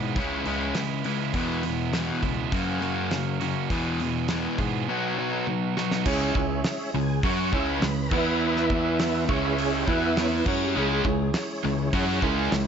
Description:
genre	classic rock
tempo	102 BPM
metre	4/4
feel	straight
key	C# minor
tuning	A4 = 439 Hz
part	crunchy overdriven guitar	riff	0.0-12.7 s	E2 to G#4	-29 LUFS	right 14 dB	none
part	sludgy distorted guitar	riff	0.0-12.7 s	E2 to F#4	-28 LUFS	left 9 dB	overdrive
part	growling fingered electric bass	bass	0.0-12.7 s	C#2 to G#2	-31 LUFS	equal	overdrive
part	damped 70s drum kit	drums	0.2-12.7 s	crash cymbal, hi-hat, kick drum, snare drum, toms	-30 LUFS	equal	none
part	warm upright piano	accompaniment	6.1-12.7 s	B3 to C#5	-33 LUFS	right 10 dB	plate reverb
part	tonewheel organ	sustained chords	6.1-12.7 s	E3 to E5	-29 LUFS	right 1 dB	slow rotary speaker, chorus vibrato
part	distorted electric guitar	riff	10.8-12.7 s	C#3 to F#4	-30 LUFS	right 1 dB	overdrive
room	moderate studio reverb, RT60 0.7 s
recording	nothing above 7.7 kHz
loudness	-23 LUFS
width	side -7 dB against mid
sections	0.0-6.1 A section; 6.1-12.7 B section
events	drum fill 5.5-6.1; tonewheel organ solo 6.1-12.7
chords	0.2 C#m; 1.3 E; 2.5 F#; 3.7 E; 4.9 B; 6.1 C#m; 8.1 E5; 9.3 C#m; 9.9 E5; 10.5 C#m

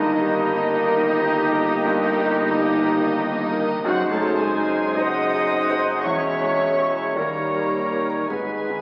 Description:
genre	classical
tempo	49-62 BPM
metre	4/4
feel	rubato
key	unclear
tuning	A4 = 440 Hz
part	clear grand piano	melody	0.0-8.8 s	D#2 to C#5	-30 LUFS	equal	none
part	warm chamber violin section	melody	0.0-8.8 s	D#5 to D#6	-35 LUFS	equal	none
part	clear oboe	second line	0.0-8.8 s	B4 to D#5	-34 LUFS	equal	none
part	mellow small flute group	second line	0.0-8.8 s	G4 to F#5	-31 LUFS	equal	none
part	warm clarinet	second line	0.0-8.8 s	D#4 to D#5	-31 LUFS	equal	none
part	warm studio violin section	second line	0.0-8.8 s	G3 to G4	-37 LUFS	equal	none
part	dark studio viola section	accompaniment	0.0-8.8 s	D#4 to D#5	-31 LUFS	equal	none
part	mellow bassoon	accompaniment	0.0-8.8 s	G3 to A#3	-31 LUFS	equal	none
part	mellow French horn section	sustained chords	0.0-8.8 s	G3 to E4	-29 LUFS	equal	none
part	clear trumpet	stabs	0.0-8.8 s	B4 to D#5	-34 LUFS	equal	none
part	warm studio cello section	bass	0.0-8.8 s	D#3 to D#4	-36 LUFS	equal	none
part	warm studio double bass section	bass	0.0-8.8 s	F#1 to E2	-43 LUFS	equal	none
part	warm tuba	bass	0.0-8.8 s	E1 to D#2	-33 LUFS	equal	none
part	timpani	percussion	8.3-8.8 s	G#2	-48 LUFS	equal	none
room	wet recital hall reverb, RT60 1.4 s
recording	very old 78 rpm record, vinyl crackle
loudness	-21 LUFS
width	mono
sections	0.0-8.8 A section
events	none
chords	0.0 D#/G; 3.8 G#7/F#; 6.0 C#m/E; 7.1 D#7; 8.3 G#m

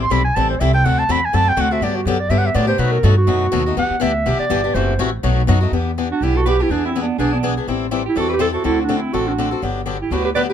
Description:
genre	acoustic string swing (jazz manouche)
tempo	246 BPM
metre	4/4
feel	swing 55% on 8ths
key	E minor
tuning	A4 = 440 Hz
part	warm clarinet	melody	0.0-10.5 s	B3 to C6	-20 LUFS	right 3 dB	plate reverb
part	picked swing-style acoustic guitar	accompaniment	0.0-10.5 s	B2 to A4	-21 LUFS	left 7 dB	none
part	upright bass	bass	0.0-10.5 s	F#1 to B2	-20 LUFS	equal	none
part	growling soprano saxophone	second line	6.1-10.5 s	D4 to D5	-25 LUFS	right 8 dB	none
room	light reverb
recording	close, detailed microphones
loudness	-15 LUFS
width	side -9 dB against mid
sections	0.0-5.7 A section; 5.7-10.5 B section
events	clarinet solo 0.0-5.7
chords	0.0 Am7; 0.8 D7; 1.8 Gmaj7; 2.8 B7; 3.8 Em7; 4.7 F#m7b5; 5.2 B7; 5.7 Em7; 6.7 E7; 7.7 Am7; 8.6 D7; 9.6 Gmaj7

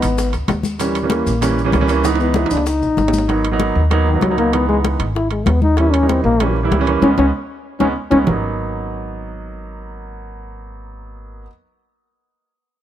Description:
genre	Afro-Cuban jazz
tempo	193 BPM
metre	4/4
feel	straight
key	G# minor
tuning	A4 = 440 Hz
part	mellow trombone	second line	0.0-8.2 s	D#3 to E4	-18 LUFS	left 3 dB	none
part	warm concert grand piano	accompaniment	0.0-11.5 s	E3 to E4	-20 LUFS	right 4 dB	none
part	upright bass	bass	0.0-11.4 s	G#1 to D#2	-20 LUFS	equal	none
part	congas	percussion	0.0-8.3 s	none	-22 LUFS	left 3 dB	none
part	maracas	percussion	0.0-3.3 s	none	-32 LUFS	left 3 dB	none
part	timbales	percussion	0.0-8.3 s	none	-26 LUFS	right 7 dB	none
part	bongos	percussion	0.2-8.3 s	none	-27 LUFS	left 6 dB	none
room	little or no reverb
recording	close, detailed microphones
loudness	-14 LUFS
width	side -11 dB against mid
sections	0.0-8.3 A section; 8.3-10.8 B section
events	trombone solo 0.0-8.3; drum fill 2.0-3.3, 7.8-8.3; band accent 7.0-8.3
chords	0.0 C#7(no3); 0.8 D#7b9; 2.0 C#m7; 3.3 G#m7; 4.5 C#m7; 5.8 D#7b9; 7.0 C#5; 8.3 G#m7

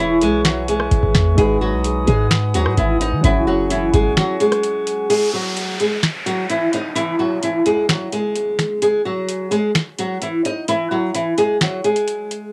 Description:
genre	hip hop, trap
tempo	129 BPM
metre	4/4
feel	half-time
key	G# minor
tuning	A4 = 444 Hz
part	flamenco guitar	melody	0.0-12.5 s	E3 to D#5	-20 LUFS	equal	cassette tape
part	soft electric-piano-like synth keys	accompaniment	0.0-5.1 s	E3 to C#5	-28 LUFS	equal	chorus, cassette tape
part	glass harmonica	sustained chords	0.0-5.1 s	G#4 to D#6	-30 LUFS	equal	cassette tape
part	clean 808-style bass	bass	0.0-4.2 s	E1 to D#3	-22 LUFS	equal	none
part	booming analog drum machine	drums	0.2-12.4 s	crash cymbal, finger snaps, hi-hat, kick drum, rim click, snare drum	-23 LUFS	equal	cassette tape
part	downlifter	sound effects	5.1-8.8 s	none	-31 LUFS	equal	none
room	little or no reverb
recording	home recording on cassette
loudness	-18 LUFS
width	mono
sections	0.0-5.1 A section; 5.1-12.5 B section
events	break 4.2-5.1, 5.1-12.5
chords	0.0 E6; 1.4 G#m7; 3.2 F#sus2; 5.1 G#5; 7.0 E; 8.8 G#5; 10.7 F#sus2

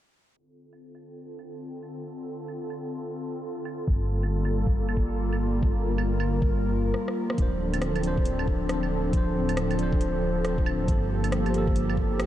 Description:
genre	future garage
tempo	137 BPM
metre	4/4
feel	swing 63% on 16ths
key	D minor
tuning	A4 = 440 Hz
part	airy breathy pad	sustained chords	0.4-12.3 s	D3 to Bb4	-30 LUFS	equal	chorus, sidechain pumping
part	garage drum kit	drums	0.7-12.3 s	claves, hi-hat, rim click	-37 LUFS	right 1 dB	none
part	dark detuned saw bass	bass	3.9-12.3 s	D1 to G1	-28 LUFS	equal	tube saturation, sidechain pumping
part	electronic kick drum	drums	3.9-12.1 s	none	-25 LUFS	equal	none
part	tine electric piano	accompaniment	7.3-12.3 s	F3 to C5	-31 LUFS	right 1 dB	sidechain pumping, ping-pong delay
room	moderate huge ambient reverb, RT60 8.6 s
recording	dreamy mix soaked in reverb, cassette tape, low-pass filter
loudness	-24 LUFS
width	side -12 dB against mid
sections	0.4-7.4 A section; 7.4-12.3 B section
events	fade-in on analog synth pad 0.4-7.4; filter sweep 0.4-7.4; break 6.9-7.4; drum fill 6.9-7.4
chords	0.4 Dm7; 3.9 Gm9; 7.4 Dm7; 10.9 Gm9

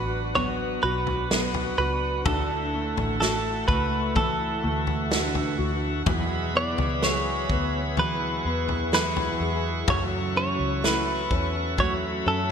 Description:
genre	pop ballad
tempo	63 BPM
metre	4/4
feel	straight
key	unclear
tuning	A4 = 441 Hz
part	direct-recorded clean electric guitar	melody	0.0-12.5 s	A4 to D5	-28 LUFS	right 2 dB	none
part	clear concert grand piano	accompaniment	0.0-12.5 s	D3 to G#4	-30 LUFS	left 2 dB	ensemble chorus
part	bright tonewheel organ	sustained chords	0.0-12.5 s	D4 to C#6	-32 LUFS	equal	overdrive, slow rotary speaker
part	picked steel-string acoustic guitar	arpeggios	0.0-12.5 s	E2 to F#4	-35 LUFS	right 7 dB	none
part	vintage muted fingered electric bass	bass	0.0-12.5 s	A1 to F#2	-30 LUFS	equal	none
part	natural country drum kit	drums	0.4-12.0 s	kick drum, snare drum, toms	-28 LUFS	left 1 dB	gated reverb
room	moderate lush hall reverb, RT60 3.1 s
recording	bright 1980s-style digital production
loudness	-23 LUFS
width	side -7 dB against mid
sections	0.0-12.5 A section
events	none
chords	0.0 Bm; 2.3 Dadd9; 6.1 Eadd9; 9.9 F#m7

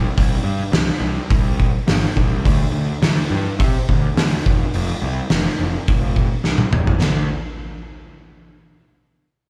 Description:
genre	garage rock duo or trio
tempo	105 BPM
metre	4/4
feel	straight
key	unclear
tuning	A4 = 440 Hz
part	fuzz picked electric bass	bass	0.0-7.3 s	F1 to C3	-23 LUFS	equal	overdrive
part	oversized low-tuned drum kit	drums	0.2-7.2 s	hi-hat, kick drum, ride cymbal, snare drum, toms	-21 LUFS	equal	none
room	light reverb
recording	live gig heard through the venue's PA, club reverb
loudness	-19 LUFS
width	mono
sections	0.0-7.0 A section; 7.0-9.3 B section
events	drum fill 6.5-7.0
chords	none

